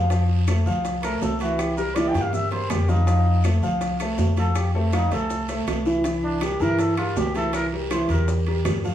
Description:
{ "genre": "Afro-Cuban jazz", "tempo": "162 BPM", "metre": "4/4", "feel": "straight", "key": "C mixolydian", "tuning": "A4 = 444 Hz", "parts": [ { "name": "growling trumpet", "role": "melody", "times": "0.0-8.3 s", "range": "C4 to G5", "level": "-29 LUFS", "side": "right 1 dB", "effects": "none" }, { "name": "warm grand piano", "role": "accompaniment", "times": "0.0-8.9 s", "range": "E3 to F5", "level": "-24 LUFS", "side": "equal", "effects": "none" }, { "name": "upright bass", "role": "bass", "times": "0.0-8.9 s", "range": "C2 to G2", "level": "-23 LUFS", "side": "equal", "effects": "none" }, { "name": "bongos", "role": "percussion", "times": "0.1-8.9 s", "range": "none", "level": "-34 LUFS", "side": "left 1 dB", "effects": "none" }, { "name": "guiro", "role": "percussion", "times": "0.1-8.9 s", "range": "none", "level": "-41 LUFS", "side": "right 4 dB", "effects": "none" }, { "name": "maracas", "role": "percussion", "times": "0.1-8.9 s", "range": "none", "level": "-44 LUFS", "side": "left 5 dB", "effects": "none" }, { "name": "timbales", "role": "percussion", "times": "0.1-8.8 s", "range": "none", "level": "-33 LUFS", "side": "right 5 dB", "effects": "none" }, { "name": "claves", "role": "percussion", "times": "0.5-8.8 s", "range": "none", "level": "-42 LUFS", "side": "left 4 dB", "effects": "none" } ], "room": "moderate large studio reverb, RT60 1.0 s", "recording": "heard from further back in the room, small room ambience", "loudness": "-20 LUFS", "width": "side -11 dB against mid", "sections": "0.0-8.9 A section", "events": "trumpet solo 0.0-8.9; drum fill 2.0-3.1", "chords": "0.1 F; 1.6 C7; 3.1 F; 6.0 C7", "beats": "| 0.11 0.48 0.85 1.22 | 1.59 1.96 2.33 2.70 | 3.07 3.44 3.82 4.19 | 4.56 4.93 5.30 5.67 | 6.05 6.42 6.79 7.16 | 7.54 7.91 8.28 8.65" }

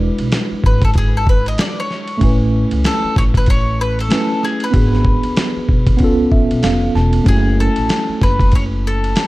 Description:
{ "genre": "hip hop, jazz-hop", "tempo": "95 BPM", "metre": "4/4", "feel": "swing 60% on 16ths", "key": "F# minor", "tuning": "A4 = 440 Hz", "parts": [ { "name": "mellow tine electric piano", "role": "accompaniment", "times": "0.0-9.3 s", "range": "G#3 to A5", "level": "-19 LUFS", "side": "right 1 dB", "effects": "medium stereo tremolo" }, { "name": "upright bass", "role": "bass", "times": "0.0-9.1 s", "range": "E1 to C#2", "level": "-18 LUFS", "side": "equal", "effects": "none" }, { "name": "dusty soul sampler-style drum kit", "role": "drums", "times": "0.2-9.3 s", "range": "hi-hat, kick drum, ride cymbal, snare drum", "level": "-16 LUFS", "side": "equal", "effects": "vintage 12-bit sampler grit" }, { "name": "bowl-back mandolin", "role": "melody", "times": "0.7-9.3 s", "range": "G#4 to D#5", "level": "-22 LUFS", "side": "left 2 dB", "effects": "tape echo, plate reverb" } ], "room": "light reverb", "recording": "dark, warm production", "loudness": "-13 LUFS", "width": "side -18 dB against mid", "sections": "0.0-9.3 A section", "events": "mandolin solo 0.0-9.3; tine electric piano fill 6.0-7.3", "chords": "0.0 E7; 2.2 Amaj7; 4.7 G#m7b5; 6.0 C#7alt; 7.3 F#m9", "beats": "0.32 0.95 1.58 | 2.21 2.84 3.47 4.11 | 4.74 5.37 6.00 6.63 | 7.26 7.89 8.53 9.16" }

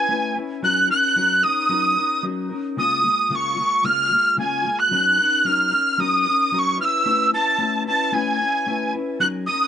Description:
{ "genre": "indie pop", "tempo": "112 BPM", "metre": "4/4", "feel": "straight", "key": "unclear", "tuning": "A4 = 440 Hz", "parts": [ { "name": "breathy bright alto recorder", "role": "melody", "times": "0.0-9.7 s", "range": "Ab5 to Gb6", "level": "-18 LUFS", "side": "right 1 dB", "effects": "ensemble chorus, cassette tape" }, { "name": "mellow electric guitar", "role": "accompaniment", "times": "0.0-9.7 s", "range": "Db3 to B4", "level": "-26 LUFS", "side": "left 4 dB", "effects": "analog chorus, vibrato effect, cassette tape" } ], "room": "light reverb", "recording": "home recording on cassette, nothing above 10.6 kHz", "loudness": "-17 LUFS", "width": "side -9 dB against mid", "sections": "0.0-9.7 A section", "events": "none", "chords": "0.0 Aadd9; 0.6 Gb6; 2.8 Db6; 4.9 Gb6; 6.8 Aadd9", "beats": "0.09 | 0.63 1.16 1.70 2.23 | 2.77 3.31 3.84 4.38 | 4.91 5.45 5.99 6.52 | 7.06 7.59 8.13 8.66 | 9.20" }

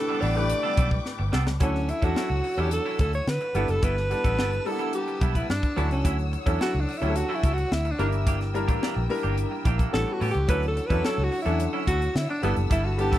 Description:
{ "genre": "polished 1980s jazz-funk pop", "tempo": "108 BPM", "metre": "4/4", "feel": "straight", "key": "D major", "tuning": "A4 = 440 Hz", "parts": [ { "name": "clear alto saxophone", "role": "melody", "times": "0.0-13.2 s", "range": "B3 to D5", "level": "-28 LUFS", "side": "equal", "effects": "none" }, { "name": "clear baby grand piano", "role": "accompaniment", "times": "0.0-13.2 s", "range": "F#3 to B4", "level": "-31 LUFS", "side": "left 1 dB", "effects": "wide subtle chorus" }, { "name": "warm studio string section", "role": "sustained chords", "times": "0.0-13.2 s", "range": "Bb4 to E6", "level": "-38 LUFS", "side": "left 2 dB", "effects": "none" }, { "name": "semi-hollow electric guitar", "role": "riff", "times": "0.1-13.2 s", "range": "E3 to B4", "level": "-33 LUFS", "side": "right 4 dB", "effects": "wide subtle chorus" }, { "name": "vintage muted fingered electric bass", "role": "bass", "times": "0.2-13.2 s", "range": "F#1 to D3", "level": "-26 LUFS", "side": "equal", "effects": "none" }, { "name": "crisp fusion drum kit", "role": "drums", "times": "0.2-13.2 s", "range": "hi-hat, kick drum, snare drum", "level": "-27 LUFS", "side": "equal", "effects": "none" } ], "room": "little or no reverb", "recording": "dry, close 1970s-style studio recording", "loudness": "-23 LUFS", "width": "side -13 dB against mid", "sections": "0.0-1.6 A section; 1.6-13.2 B section", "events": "drum fill 1.1-1.6; alto saxophone solo 1.6-13.2", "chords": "0.0 A9sus4; 1.6 Dmaj9; 3.6 G69; 5.8 Dmaj9; 8.0 Gm6; 9.9 A9; 10.5 Dmaj9; 12.4 G69", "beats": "0.50 1.05 | 1.61 2.16 2.72 3.27 | 3.83 4.38 4.94 5.49 | 6.05 6.60 7.16 7.71 | 8.27 8.82 9.38 9.93 | 10.49 11.04 11.60 12.15 | 12.71" }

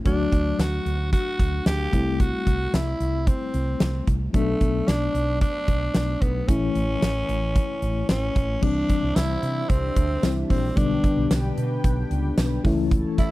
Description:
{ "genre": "1980s-style pop", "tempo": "112 BPM", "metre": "4/4", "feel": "straight", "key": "unclear", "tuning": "A4 = 441 Hz", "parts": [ { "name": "FM electric piano with auto-pan", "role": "accompaniment", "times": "0.0-13.3 s", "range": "D3 to F#4", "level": "-27 LUFS", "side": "left 4 dB", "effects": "none" }, { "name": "growling tenor saxophone", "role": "melody", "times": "0.1-13.3 s", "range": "A3 to G4", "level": "-28 LUFS", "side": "right 1 dB", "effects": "slapback echo" }, { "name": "woody fretless electric bass", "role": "bass", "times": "0.1-13.0 s", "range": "A1 to C3", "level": "-26 LUFS", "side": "right 1 dB", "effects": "none" }, { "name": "huge arena drum kit", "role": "drums", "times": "0.1-13.3 s", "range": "crash cymbal, hi-hat, kick drum, snare drum", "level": "-24 LUFS", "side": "equal", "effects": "none" }, { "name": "chorused pulse-width pad", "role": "sustained chords", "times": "8.6-13.3 s", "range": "D4 to A5", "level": "-34 LUFS", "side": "equal", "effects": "none" }, { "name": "tambourine", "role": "percussion", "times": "9.2-12.5 s", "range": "none", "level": "-44 LUFS", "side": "right 18 dB", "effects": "none" } ], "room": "light reverb", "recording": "dry, close 1970s-style studio recording", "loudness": "-20 LUFS", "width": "side -18 dB against mid", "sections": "0.0-8.6 A section; 8.6-13.3 B section", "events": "none", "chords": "0.1 D; 1.9 C6; 4.3 Bm7; 6.5 A; 8.6 Cadd9; 10.8 G/B; 12.6 A", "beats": "| 0.06 0.59 1.13 1.66 | 2.20 2.73 3.27 3.81 | 4.34 4.88 5.41 5.95 | 6.49 7.02 7.56 8.09 | 8.63 9.16 9.70 10.23 | 10.77 11.31 11.84 12.38 | 12.91" }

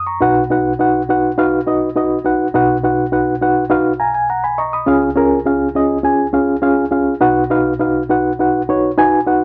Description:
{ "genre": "soul", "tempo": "103 BPM", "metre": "4/4", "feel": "straight", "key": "unclear", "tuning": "A4 = 440 Hz", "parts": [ { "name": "mellow reed electric piano", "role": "solo", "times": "0.0-9.4 s", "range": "B1 to D#6", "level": "-15 LUFS", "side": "equal", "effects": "fast tremolo" } ], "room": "moderate small room reverb, RT60 0.5 s", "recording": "band playing live in one room", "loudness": "-15 LUFS", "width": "mono", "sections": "0.0-4.9 A section; 4.9-9.4 B section", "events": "reed electric piano fill 3.7-4.9", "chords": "0.2 B; 4.9 C#; 7.2 B", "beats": "| 0.20 0.79 1.37 1.96 | 2.54 3.12 3.71 4.29 | 4.87 5.46 6.04 6.63 | 7.21 7.80 8.38 8.97" }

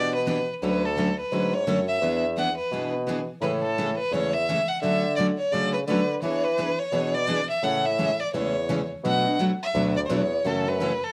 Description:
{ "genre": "acoustic string swing (jazz manouche)", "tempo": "171 BPM", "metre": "4/4", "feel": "swing 60% on 8ths", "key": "A major", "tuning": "A4 = 443 Hz", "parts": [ { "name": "warm violin", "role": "melody", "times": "0.0-11.1 s", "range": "A4 to F#5", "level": "-28 LUFS", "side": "equal", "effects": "none" }, { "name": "picked steel-string acoustic guitar", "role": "accompaniment", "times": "0.0-10.9 s", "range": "B2 to G#4", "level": "-31 LUFS", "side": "equal", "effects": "none" }, { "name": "picked steel-string acoustic guitar", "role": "accompaniment", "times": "0.0-10.9 s", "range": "B2 to B4", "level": "-36 LUFS", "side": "equal", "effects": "none" }, { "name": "mellow bassoon", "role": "bass", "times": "0.0-11.0 s", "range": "D2 to E3", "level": "-30 LUFS", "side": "equal", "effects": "none" } ], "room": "light reverb", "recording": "none", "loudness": "-25 LUFS", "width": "mono", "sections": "0.0-9.0 A section; 9.0-11.1 B section", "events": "none", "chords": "0.0 Em7; 0.6 Dmaj7; 2.0 E7; 3.4 Amaj7; 4.8 Dmaj7; 6.2 E7; 7.6 Amaj7; 9.0 Bm11; 10.5 F#m7", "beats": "0.27 | 0.62 0.97 1.32 1.67 | 2.02 2.37 2.72 3.07 | 3.42 3.77 4.12 4.47 | 4.83 5.18 5.53 5.88 | 6.23 6.58 6.93 7.28 | 7.63 7.99 8.34 8.69 | 9.04 9.39 9.75 10.10 | 10.45 10.80" }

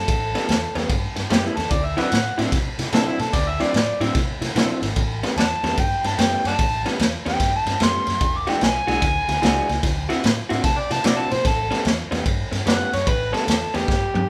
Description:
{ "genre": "electric blues shuffle", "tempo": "148 BPM", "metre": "4/4", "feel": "swing 65% on 8ths", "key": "A mixolydian", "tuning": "A4 = 440 Hz", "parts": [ { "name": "overdriven harmonica", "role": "melody", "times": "0.0-14.3 s", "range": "E4 to D6", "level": "-26 LUFS", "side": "equal", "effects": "none" }, { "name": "vintage muted fingered electric bass", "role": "bass", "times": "0.0-14.2 s", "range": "E1 to C3", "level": "-31 LUFS", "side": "equal", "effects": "none" }, { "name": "electric guitar through a small old amp", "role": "riff", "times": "0.1-14.2 s", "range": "A2 to F#4", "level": "-29 LUFS", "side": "equal", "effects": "none" }, { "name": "raw garage drum kit", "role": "drums", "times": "0.1-14.3 s", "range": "kick drum, ride cymbal, snare drum, toms", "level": "-24 LUFS", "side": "equal", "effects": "none" } ], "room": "light reverb", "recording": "band playing live in one room", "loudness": "-21 LUFS", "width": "mono", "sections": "0.0-14.3 A section", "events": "drum fill 13.9-14.3", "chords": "0.0 A9; 1.7 D9; 5.0 A9; 8.2 E9; 9.8 D9; 11.5 A9", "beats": "| 0.08 0.49 0.90 1.30 | 1.71 2.12 2.52 2.93 | 3.34 3.75 4.15 4.56 | 4.96 5.37 5.78 6.18 | 6.59 7.00 7.40 7.81 | 8.21 8.62 9.02 9.43 | 9.83 10.24 10.64 11.05 | 11.45 11.86 12.26 12.67 | 13.07 13.48 13.88 14.29" }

